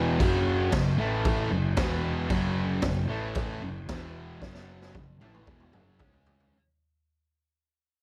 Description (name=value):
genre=garage rock duo or trio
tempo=114 BPM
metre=4/4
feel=straight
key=F# minor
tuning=A4 = 440 Hz
part: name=thick fuzz guitar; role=riff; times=0.0-6.5 s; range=E2 to C#4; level=-31 LUFS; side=equal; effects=distortion
part: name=hollow-body short-scale picked electric bass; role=bass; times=0.0-6.5 s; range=E1 to C#2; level=-36 LUFS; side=equal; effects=none
part: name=raw garage drum kit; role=drums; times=0.2-6.5 s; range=crash cymbal, kick drum, snare drum, toms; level=-33 LUFS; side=equal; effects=none
room=light reverb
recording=none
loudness=-28 LUFS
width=mono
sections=0.0-6.5 A section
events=fade-out 0.0-6.5; drum fill 4.4-6.5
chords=0.2 F#5; 1.0 A5; 1.5 F#5; 1.8 E5; 2.3 F#5; 3.1 A5; 3.6 F#5; 3.9 E5; 4.4 F#m; 6.0 C#5